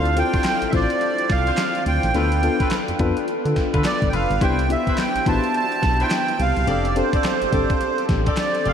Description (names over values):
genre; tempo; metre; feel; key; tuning
R&B, new jack swing; 106 BPM; 4/4; swing 62% on 16ths; D dorian; A4 = 441 Hz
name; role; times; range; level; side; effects
accordion; melody; 0.0-8.7 s; C5 to A5; -23 LUFS; right 3 dB; light tremolo tuning, tape echo
FM electric piano with tremolo; accompaniment; 0.0-8.7 s; B3 to C5; -24 LUFS; left 4 dB; none
warm horn section; stabs; 0.0-8.7 s; D4 to D5; -29 LUFS; left 1 dB; none
solid FM bass; bass; 0.0-8.7 s; F1 to D3; -22 LUFS; equal; none
gated 80s digital drum machine; drums; 0.1-8.7 s; handclaps, hi-hat, kick drum, snare drum; -25 LUFS; equal; gated reverb, gated reverb snare
room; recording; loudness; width
wet huge ambient reverb, RT60 8.4 s; dreamy mix soaked in reverb; -18 LUFS; side -8 dB against mid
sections
0.0-8.7 A section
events
none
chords
0.0 Dm7; 2.1 G9/D; 4.4 Cmaj7; 6.7 F69